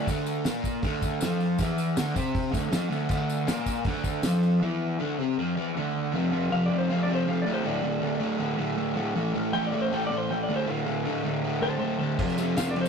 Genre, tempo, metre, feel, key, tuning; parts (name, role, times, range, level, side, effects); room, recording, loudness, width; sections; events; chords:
garage rock duo or trio; 158 BPM; 4/4; straight; D minor; A4 = 442 Hz
clean lap steel guitar; melody; 0.0-0.1, 6.5-12.9 s; C5 to A5; -31 LUFS; left 1 dB
raw garage guitar; riff; 0.0-12.9 s; D2 to C4; -26 LUFS; equal; overdrive, spring reverb
cloth-damped thuddy drum kit; drums; 0.1-4.3, 12.2-12.8 s; crash cymbal, hi-hat, kick drum, ride cymbal, snare drum; -30 LUFS; equal
tambourine; percussion; 0.1-4.5, 12.3-12.9 s; -42 LUFS; left 4 dB
wet booth ambience, RT60 0.2 s; rough rehearsal-room recording, tube saturation; -25 LUFS; side -6 dB against mid
0.1-6.1 A section; 6.1-12.9 B section
break 4.6-6.1
0.1 Dm; 6.1 F5; 7.5 D5; 9.2 A5; 10.5 Dm; 12.2 F5